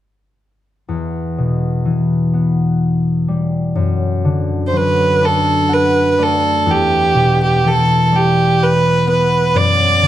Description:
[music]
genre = celtic folk, Celtic slow air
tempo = 42 BPM (dotted quarters)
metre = 6/8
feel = rubato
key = E minor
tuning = A4 = 440 Hz
[part]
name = concert harp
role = accompaniment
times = 0.9-10.1 s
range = E2 to F#5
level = -15 LUFS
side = left 2 dB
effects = none
[part]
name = rich fiddle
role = melody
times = 4.7-10.1 s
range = G4 to D5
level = -14 LUFS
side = right 2 dB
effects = none
[sound]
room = moderate recital hall reverb, RT60 1.7 s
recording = dark, warm production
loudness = -13 LUFS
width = side -12 dB against mid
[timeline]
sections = 0.9-6.7 A section; 6.7-10.1 B section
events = harp fill 5.2-6.7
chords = 0.9 Em; 3.8 D/F#; 6.7 Em; 9.5 D/F#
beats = | 0.89 2.34 | 3.77 5.22 | 6.68 8.13 | 9.55

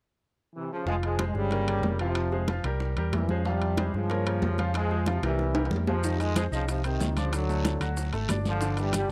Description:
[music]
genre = latin, salsa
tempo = 186 BPM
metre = 4/4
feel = straight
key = F harmonic minor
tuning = A4 = 440 Hz
[part]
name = brilliant trombone section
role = melody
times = 0.6-9.1 s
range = C3 to Ab3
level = -34 LUFS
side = equal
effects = none
[part]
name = bright baby grand piano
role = accompaniment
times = 0.9-9.1 s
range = D3 to F5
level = -36 LUFS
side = equal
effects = none
[part]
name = picked electric bass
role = bass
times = 0.9-9.1 s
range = F1 to G2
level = -31 LUFS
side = equal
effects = none
[part]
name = bongos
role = percussion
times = 0.9-9.1 s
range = none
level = -41 LUFS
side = equal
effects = none
[part]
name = congas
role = percussion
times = 0.9-9.1 s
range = none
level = -37 LUFS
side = equal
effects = none
[part]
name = timbales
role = percussion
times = 1.0-9.1 s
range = none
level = -37 LUFS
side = equal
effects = none
[part]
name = guiro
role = percussion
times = 6.0-9.1 s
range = none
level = -46 LUFS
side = equal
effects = none
[part]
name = maracas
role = percussion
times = 6.0-9.1 s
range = none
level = -45 LUFS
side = equal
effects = none
[sound]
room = small room ambience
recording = dry, close 1970s-style studio recording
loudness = -28 LUFS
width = mono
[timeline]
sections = 0.9-6.0 A section; 6.0-9.1 B section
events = drum fill 5.2-6.0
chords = 0.0 N.C.; 0.9 Fm; 1.5 Gm7b5; 2.2 Fm; 2.8 C7; 3.5 Fm; 4.1 Gm7b5; 4.7 C7; 6.0 F5; 7.3 D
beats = 0.22 0.55 | 0.87 1.19 1.52 1.84 | 2.16 2.49 2.81 3.13 | 3.46 3.78 4.10 4.42 | 4.75 5.07 5.39 5.72 | 6.04 6.36 6.68 7.01 | 7.33 7.65 7.97 8.30 | 8.62 8.94

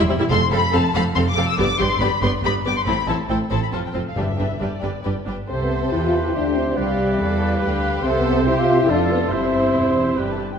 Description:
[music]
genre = quick classical-period movement for symphony orchestra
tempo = 141 BPM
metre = 3/4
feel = straight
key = C major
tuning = A4 = 440 Hz
[part]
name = rich studio violin section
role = second line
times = 0.0-10.4 s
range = C4 to F5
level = -30 LUFS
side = left 3 dB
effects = none
[part]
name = warm studio viola section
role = accompaniment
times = 0.0-10.4 s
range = G3 to D5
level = -25 LUFS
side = right 1 dB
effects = none
[part]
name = warm studio cello section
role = bass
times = 0.0-10.6 s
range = E2 to C4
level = -27 LUFS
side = right 2 dB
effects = none
[part]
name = rich studio double bass section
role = bass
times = 0.1-10.6 s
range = E1 to C3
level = -25 LUFS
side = right 2 dB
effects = none
[part]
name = dark studio violin section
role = melody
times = 0.3-10.6 s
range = D5 to E6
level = -26 LUFS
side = left 5 dB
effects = none
[part]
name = timpani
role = percussion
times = 4.2-4.8 s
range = G2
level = -28 LUFS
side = left 1 dB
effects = none
[part]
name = mellow small flute group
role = second line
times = 5.5-10.4 s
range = D5 to F5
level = -28 LUFS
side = left 1 dB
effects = none
[part]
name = warm clarinet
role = second line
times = 5.5-10.4 s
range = G4 to A4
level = -29 LUFS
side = left 3 dB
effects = none
[part]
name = warm oboe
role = second line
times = 5.5-10.4 s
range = A4 to C5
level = -29 LUFS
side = right 2 dB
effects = none
[part]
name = dark French horn section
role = sustained chords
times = 5.5-10.2 s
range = G3 to F4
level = -21 LUFS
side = left 2 dB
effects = none
[sound]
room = wet concert hall reverb, RT60 1.8 s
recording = minimal, uncompressed stereo recording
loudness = -17 LUFS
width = side -7 dB against mid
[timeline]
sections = 0.0-5.5 A section; 5.5-10.6 B section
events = none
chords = 0.3 F; 1.6 G; 2.9 Am; 3.7 F5; 4.2 G; 5.5 C; 6.8 G7/C; 8.0 C; 8.9 Dm/F; 9.3 C/G; 10.2 G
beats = | 0.31 0.74 1.16 | 1.59 2.01 2.44 | 2.87 3.29 3.73 | 4.17 4.61 5.05 | 5.49 5.92 6.34 | 6.77 7.19 7.62 | 8.04 8.46 8.88 | 9.30 9.74 10.17

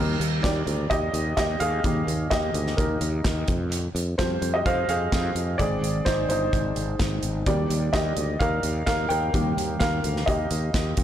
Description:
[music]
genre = piano-driven pop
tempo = 128 BPM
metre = 4/4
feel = straight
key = Eb major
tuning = A4 = 442 Hz
[part]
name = warm baby grand piano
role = accompaniment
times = 0.0-11.0 s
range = Eb3 to G5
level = -25 LUFS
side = equal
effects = none
[part]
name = sustaining fretless electric bass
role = bass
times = 0.0-11.0 s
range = G1 to F2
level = -28 LUFS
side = equal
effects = none
[part]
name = modern studio drum kit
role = drums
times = 0.2-11.0 s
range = hi-hat, kick drum, snare drum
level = -28 LUFS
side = equal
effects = none
[sound]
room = light reverb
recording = blown-out, overdriven recording, overdrive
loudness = -22 LUFS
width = side -10 dB against mid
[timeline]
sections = 0.0-11.0 A section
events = grand piano solo 0.0-11.0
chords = 0.0 Eb; 3.5 Fsus2; 5.6 Ab; 7.5 Eb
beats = 0.44 0.91 1.38 | 1.84 2.31 2.78 3.25 | 3.72 4.19 4.66 5.12 | 5.59 6.06 6.53 7.00 | 7.47 7.93 8.40 8.87 | 9.34 9.81 10.28 10.74

